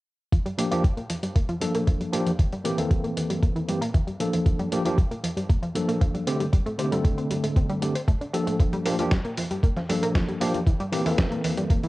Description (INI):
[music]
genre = nu-disco, nu disco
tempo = 116 BPM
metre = 4/4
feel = straight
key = G dorian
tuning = A4 = 438 Hz
[part]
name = analog pluck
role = arpeggios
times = 0.3-11.9 s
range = E3 to C5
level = -29 LUFS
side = equal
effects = chorus, sidechain pumping, cassette tape, analog delay
[part]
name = dusty soul sampler-style drum kit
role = drums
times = 0.3-11.9 s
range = hi-hat, snare drum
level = -33 LUFS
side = equal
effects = studio reverb, cassette tape
[part]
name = electronic kick drum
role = drums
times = 0.3-11.8 s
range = none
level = -21 LUFS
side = equal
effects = studio reverb, cassette tape
[part]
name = tine electric piano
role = accompaniment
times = 0.6-11.9 s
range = D3 to A4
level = -27 LUFS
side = equal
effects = medium stereo tremolo, sidechain pumping, low-pass filter, cassette tape, tape echo
[sound]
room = light reverb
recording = home recording on cassette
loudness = -22 LUFS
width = side -19 dB against mid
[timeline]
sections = 0.3-11.9 A section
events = filter sweep on synth arpeggio sound 0.3-11.9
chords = 0.3 Gm7; 2.4 C7; 4.2 Gm7; 6.3 D7sus4; 8.6 Gm7; 10.7 C7